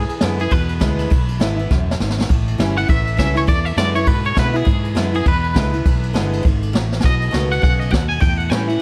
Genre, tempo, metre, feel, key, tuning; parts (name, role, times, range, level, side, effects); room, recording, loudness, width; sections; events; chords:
rockabilly; 203 BPM; 4/4; swing 59% on 8ths; E mixolydian; A4 = 440 Hz
twangy electric guitar; melody; 0.0-8.8 s; G#4 to G#5; -25 LUFS; equal; tremolo, analog delay
picked steel-string acoustic guitar; accompaniment; 0.0-8.8 s; E2 to F#4; -25 LUFS; equal
mellow fretless electric bass; bass; 0.0-8.8 s; E1 to B2; -23 LUFS; equal
jazz brush drum kit; drums; 0.1-8.7 s; kick drum, ride cymbal, snare drum; -21 LUFS; equal
light reverb, small room ambience; -18 LUFS; mono
0.0-8.8 A section
drum fill 1.7-2.3, 6.9
0.0 E7; 2.3 A7; 3.5 E7; 7.0 B7; 8.2 A7